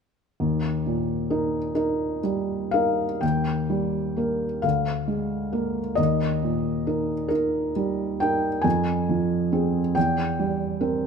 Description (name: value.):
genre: classical, romantic nocturne for solo piano.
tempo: 44 BPM (dotted quarters).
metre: 6/8.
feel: uneven beats, rubato.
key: Eb major.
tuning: A4 = 440 Hz.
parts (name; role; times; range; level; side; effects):
felt-muted upright piano; solo; 0.4-11.1 s; D2 to Ab5; -22 LUFS; equal; none.
room: moderate recital hall reverb, RT60 1.6 s.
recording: close, detailed microphones.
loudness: -22 LUFS.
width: side -6 dB against mid.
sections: 0.4-3.2 A section; 3.2-11.1 B section.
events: none.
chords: 0.4 Eb; 4.6 Bb7/D; 6.0 Eb; 8.6 Fm; 10.0 C7/E.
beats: | 0.40 1.76 | 3.22 4.64 | 5.98 7.31 | 8.65 9.96.